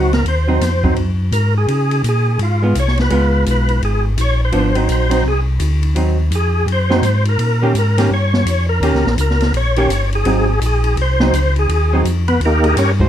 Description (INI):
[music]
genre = soul jazz organ trio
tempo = 168 BPM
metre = 4/4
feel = swing 63% on 8ths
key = Ab mixolydian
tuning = A4 = 439 Hz
[part]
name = percussive tonewheel organ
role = melody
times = 0.0-12.9 s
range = Bb3 to Db5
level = -19 LUFS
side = equal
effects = slow rotary speaker, overdrive, chorus vibrato, plate reverb
[part]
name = hollow-body jazz guitar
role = accompaniment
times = 0.0-13.1 s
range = Eb3 to C5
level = -19 LUFS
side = right 2 dB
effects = none
[part]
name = mellow tonewheel organ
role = bass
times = 0.0-13.1 s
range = G1 to Db3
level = -16 LUFS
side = equal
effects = slow rotary speaker
[part]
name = open jazz drum kit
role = drums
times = 0.1-13.1 s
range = hi-hat, kick drum, ride cymbal, snare drum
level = -24 LUFS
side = left 1 dB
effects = none
[sound]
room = light reverb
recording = dark, warm production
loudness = -13 LUFS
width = side -10 dB against mid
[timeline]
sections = 0.0-13.1 A section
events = tonewheel organ solo 0.0-13.1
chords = 0.0 Ab7; 1.7 Db7; 4.5 Ab7; 7.4 Eb7; 10.3 Ab7; 12.4 Eb7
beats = | 0.26 0.61 0.97 1.32 | 1.68 2.04 2.39 2.75 | 3.11 3.46 3.82 4.18 | 4.53 4.89 5.25 5.61 | 5.96 6.32 6.68 7.04 | 7.39 7.75 8.11 8.47 | 8.82 9.18 9.54 9.90 | 10.26 10.62 10.97 11.33 | 11.69 12.05 12.41 12.77